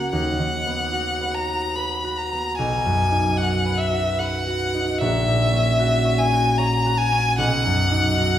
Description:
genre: classical, romantic duo for violin and harp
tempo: 75 BPM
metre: 3/4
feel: rubato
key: B major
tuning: A4 = 440 Hz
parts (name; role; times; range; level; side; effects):
- clear violin; melody; 0.0-8.4 s; E5 to B5; -22 LUFS; left 2 dB; none
- concert harp; accompaniment; 0.0-8.4 s; A#1 to C#5; -21 LUFS; right 1 dB; none
room: wet recital hall reverb, RT60 1.7 s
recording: heard from further back in the room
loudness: -19 LUFS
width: side -11 dB against mid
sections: 0.0-8.4 A section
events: none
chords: 0.1 B/D#; 2.6 B; 5.0 F#7/A#; 7.4 B

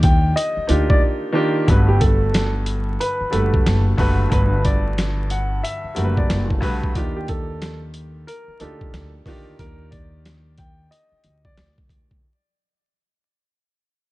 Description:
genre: hip hop, boom-bap hip-hop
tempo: 91 BPM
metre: 4/4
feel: swing 62% on 16ths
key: unclear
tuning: A4 = 440 Hz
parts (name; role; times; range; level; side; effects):
- clear upright piano; melody; 0.0-11.7 s; G4 to G5; -26 LUFS; equal; high-pass filter, low-pass filter
- clear baby grand piano; accompaniment; 0.0-12.3 s; G2 to B4; -24 LUFS; equal; high-pass filter, low-pass filter
- upright bass; bass; 0.0-12.2 s; F#1 to Eb2; -21 LUFS; equal; none
- boom bap sampler-style drum kit; drums; 0.0-12.2 s; hi-hat, kick drum, snare drum; -20 LUFS; equal; none
room: small room reverb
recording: dark, warm production, vinyl crackle, nothing above 10.7 kHz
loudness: -17 LUFS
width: side -19 dB against mid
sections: 0.0-12.2 A section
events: fade-out 0.0-12.2; break 1.0-1.7, 9.6-12.2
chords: 0.0 Ebmaj9; 1.7 Gmaj9; 7.0 Ebmaj9

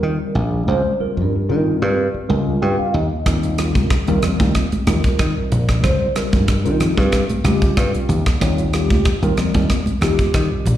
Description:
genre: electric jazz fusion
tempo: 93 BPM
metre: 4/4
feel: straight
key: Eb mixolydian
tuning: A4 = 442 Hz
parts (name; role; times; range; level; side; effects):
- mellow tine electric piano; accompaniment; 0.0-10.7 s; G3 to G5; -21 LUFS; equal; medium stereo tremolo, phaser, slapback echo
- dry thumbed slap bass; bass; 0.0-10.8 s; Bb1 to Eb3; -18 LUFS; equal; none
- crisp fusion drum kit; drums; 3.3-10.8 s; hi-hat, kick drum, rim click; -19 LUFS; equal; none
- congas; percussion; 3.8-10.8 s; none; -23 LUFS; right 1 dB; slapback echo
room: little or no reverb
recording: live gig heard through the venue's PA, recital hall reverb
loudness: -15 LUFS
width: side -12 dB against mid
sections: 0.0-10.8 A section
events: tine electric piano fill 2.3-3.3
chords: 0.0 Eb69

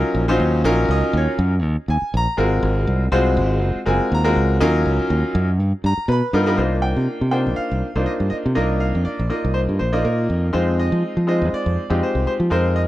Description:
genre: electric jazz fusion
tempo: 121 BPM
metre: 4/4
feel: swing 54% on 16ths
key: Eb dorian, C minor from 6.6 s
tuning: A4 = 437 Hz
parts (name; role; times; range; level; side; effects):
- bright grand piano; accompaniment; 0.0-12.9 s; Gb3 to B5; -20 LUFS; left 1 dB; none
- modern bright fingered electric bass; bass; 0.0-12.9 s; Gb1 to F3; -19 LUFS; equal; none
room: small room ambience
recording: dry, close 1970s-style studio recording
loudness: -17 LUFS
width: side -15 dB against mid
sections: 0.0-6.6 A section; 6.6-12.9 B section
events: none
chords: 0.0 Ebm9; 2.4 Ab13; 4.6 Ebm9; 5.6 G7alt; 6.6 Cm11; 10.5 Fm7

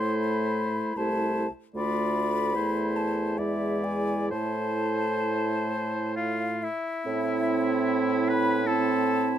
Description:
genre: classical, slow romantic movement for wind quintet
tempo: 63-79 BPM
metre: 3/4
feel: rubato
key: A minor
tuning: A4 = 439 Hz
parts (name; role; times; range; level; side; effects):
- mellow hollow concert flute; melody; 0.0-9.4 s; E5 to C6; -31 LUFS; left 4 dB; none
- warm oboe; second line; 0.0-9.3 s; E4 to D5; -32 LUFS; left 2 dB; none
- bright clarinet; accompaniment; 0.0-9.4 s; E4 to F4; -33 LUFS; right 6 dB; none
- mellow French horn; accompaniment; 0.0-9.4 s; G#3 to C4; -30 LUFS; right 1 dB; none
- dark bassoon; bass; 0.0-9.4 s; C2 to A2; -30 LUFS; right 2 dB; none
room: light reverb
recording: close, detailed microphones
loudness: -24 LUFS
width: side -10 dB against mid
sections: 0.0-7.1 A section; 7.1-9.4 A section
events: none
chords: 0.0 Am; 1.8 Dm; 2.5 Am/E; 3.4 E7; 4.3 Am

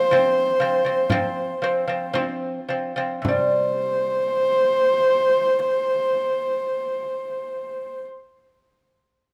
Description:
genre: mongolian traditional, Mongolian folk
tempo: 53-62 BPM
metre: 4/4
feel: straight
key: unclear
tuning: A4 = 441 Hz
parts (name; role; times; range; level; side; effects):
- warm horsehead fiddle; melody; 0.0-8.0 s; C5; -23 LUFS; equal; slapback echo
- lute; arpeggios; 0.0-8.1 s; C3 to C4; -26 LUFS; equal; none
- frame drum; percussion; 0.1-3.8 s; none; -29 LUFS; equal; none
room: light reverb, small room ambience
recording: rough home demo mix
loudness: -22 LUFS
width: mono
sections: 0.0-3.3 A section; 3.3-7.8 B section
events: slowing down 0.0-3.3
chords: 0.0 F5; 3.3 C5

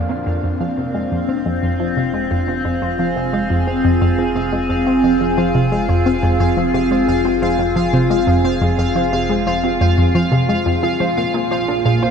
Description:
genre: ambient, sequencer-driven space music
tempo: 88 BPM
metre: 4/4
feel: straight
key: F dorian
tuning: A4 = 440 Hz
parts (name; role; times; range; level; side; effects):
- evolving wavetable pad; sustained chords; 0.0-12.1 s; Bb2 to F5; -18 LUFS; left 1 dB; chorus, built-in reverb, phaser, shimmer reverb
- analog pluck; riff; 0.0-12.1 s; F2 to F4; -18 LUFS; equal; chorus, phaser, analog delay
- round analog bass; bass; 0.0-12.1 s; F1 to Bb1; -32 LUFS; equal; none
- pulsing gated texture; texture; 0.2-12.1 s; F5; -26 LUFS; right 2 dB; chorus, built-in reverb, shimmer reverb
- warbly dusty pluck; arpeggios; 0.1-12.1 s; F3 to C5; -31 LUFS; right 2 dB; chorus, auto-pan, analog delay, shimmer reverb
room: wet huge ambient reverb, RT60 8.2 s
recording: dreamy mix soaked in reverb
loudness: -15 LUFS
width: side -6 dB against mid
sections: 0.0-12.1 A section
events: fade-in on synth arpeggio sound 0.0-12.1; fade-in on analog synth bass 0.0-12.1; filter sweep on synth arpeggio sound 0.0-12.1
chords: 0.0 Fm; 10.8 Bb

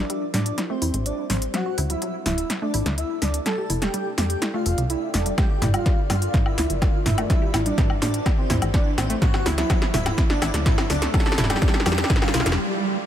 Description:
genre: melodic techno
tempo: 125 BPM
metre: 4/4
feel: straight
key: unclear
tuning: A4 = 440 Hz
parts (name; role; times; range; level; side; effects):
- wide unison lead; melody; 0.0-12.5 s; C4 to A4; -29 LUFS; equal; wide subtle chorus, cassette tape, sidechain pumping, dub echo
- airy dreamy lead; second line; 0.0-12.5 s; C5 to A5; -34 LUFS; equal; chorus, sidechain pumping, digital delay
- analog pluck; arpeggios; 0.0-12.4 s; F#3 to A4; -32 LUFS; equal; chorus, cassette tape, sidechain pumping, digital delay
- plucky analog bass; bass; 0.0-12.6 s; D1 to A2; -25 LUFS; equal; sidechain pumping
- riser and swell; sound effects; 0.8-13.1 s; none; -33 LUFS; right 2 dB; none
- deep dark ambient pad; texture; 0.0-12.6 s; F4 to G5; -35 LUFS; left 1 dB; chorus, built-in reverb, sidechain pumping
- techno drum kit; drums; 0.1-12.6 s; hi-hat, snare drum, toms, woodblock; -25 LUFS; equal; sidechain pumping on hats, sidechain pumping on perc, sidechain pumping on toms, sidechain pumping on cymbals
- electronic kick drum; drums; 5.4-12.2 s; none; -21 LUFS; equal; none
room: light reverb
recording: none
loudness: -20 LUFS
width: side -10 dB against mid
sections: 0.0-13.1 A section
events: build-up 0.0-13.1; drum fill 0.0-12.6; filter sweep on synth pluck 0.0-13.1; filter sweep on analog synth lead 0.0-13.1; filter sweep on digital synth lead 0.0-13.1; swell 12.1-13.1; stop 12.6-13.1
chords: 0.0 Am; 1.5 D; 3.5 F6; 5.4 Gm; 7.3 Am; 9.2 D; 11.1 F6

